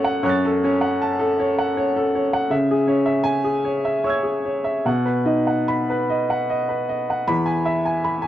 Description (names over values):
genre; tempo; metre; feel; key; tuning
neoclassical minimalist piano; 72-82 BPM; 3/4; rubato; E major; A4 = 440 Hz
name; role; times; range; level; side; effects
clear upright piano; solo; 0.0-8.3 s; E2 to A6; -18 LUFS; equal; none
room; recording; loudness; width
little or no reverb; dry, close 1970s-style studio recording; -18 LUFS; side -12 dB against mid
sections
0.0-7.3 A section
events
none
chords
0.0 F#m; 2.5 C#m; 4.9 B; 7.3 E